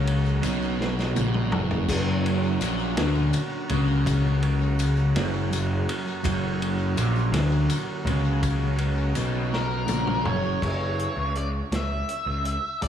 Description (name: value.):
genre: psychedelic rock.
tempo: 55 BPM (dotted quarters).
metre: 6/8.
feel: straight.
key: F# major.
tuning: A4 = 442 Hz.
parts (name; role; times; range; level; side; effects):
combo organ; sustained chords; 0.0-10.6 s; F#3 to F#4; -34 LUFS; right 6 dB; none.
fuzz guitar; riff; 0.0-10.6 s; F#2 to D3; -26 LUFS; left 1 dB; distortion, phaser, tape echo.
fuzz picked electric bass; bass; 0.0-12.9 s; F#1 to D2; -26 LUFS; equal; overdrive.
vintage drum kit; drums; 0.1-12.9 s; crash cymbal, hi-hat, kick drum, ride cymbal, snare drum, splash cymbal, toms; -31 LUFS; equal; none.
tambourine; percussion; 0.3-10.1 s; none; -42 LUFS; left 12 dB; tape echo.
octave-fuzz lead guitar; melody; 9.5-12.9 s; A#4 to E5; -29 LUFS; left 1 dB; distortion, tape echo.
room: light reverb, small room ambience.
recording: echo-heavy mix.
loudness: -22 LUFS.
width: side -9 dB against mid.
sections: 0.0-10.6 A section; 10.6-12.9 B section.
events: drum fill 0.8-1.9, 9.5-10.6.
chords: 0.0 F#; 10.6 F#5.